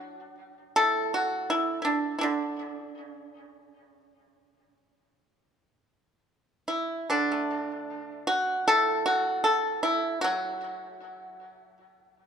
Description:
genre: chinese traditional, Chinese solo plucked strings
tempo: 68-82 BPM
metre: 4/4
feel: rubato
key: D gong mode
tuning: A4 = 439 Hz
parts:
  - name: pipa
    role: solo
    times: 0.0-12.3 s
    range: A2 to A4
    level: -25 LUFS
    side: equal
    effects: tape echo
room: moderate scoring stage reverb, RT60 2.0 s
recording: dark, warm production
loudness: -25 LUFS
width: side -7 dB against mid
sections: 0.0-7.1 A section; 7.1-12.3 B section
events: none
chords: none

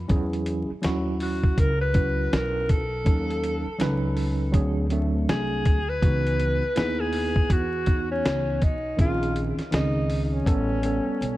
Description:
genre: hip hop, jazz-hop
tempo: 81 BPM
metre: 4/4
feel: swing 60% on 16ths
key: unclear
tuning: A4 = 441 Hz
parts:
  - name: mellow tine electric piano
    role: accompaniment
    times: 0.0-11.4 s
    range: Eb3 to Cb5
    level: -28 LUFS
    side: right 2 dB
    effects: overdrive, fast stereo tremolo
  - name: upright bass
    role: bass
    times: 0.0-11.4 s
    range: A1 to E2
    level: -28 LUFS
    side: equal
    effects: none
  - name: dusty soul sampler-style drum kit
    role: drums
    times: 0.1-11.4 s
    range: hi-hat, kick drum, snare drum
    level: -24 LUFS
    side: equal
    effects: none
  - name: breathy alto saxophone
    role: melody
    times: 1.2-11.4 s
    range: Db4 to Cb5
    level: -28 LUFS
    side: left 1 dB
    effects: tape echo
room: light reverb, small room ambience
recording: dark, warm production, vinyl crackle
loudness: -22 LUFS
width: side -16 dB against mid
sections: 0.0-11.4 A section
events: drum fill 11.2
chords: 0.1 E69; 3.1 Ebm7b5; 4.5 D7#11; 6.0 Dbm11; 9.0 Bbm11; 10.5 A9

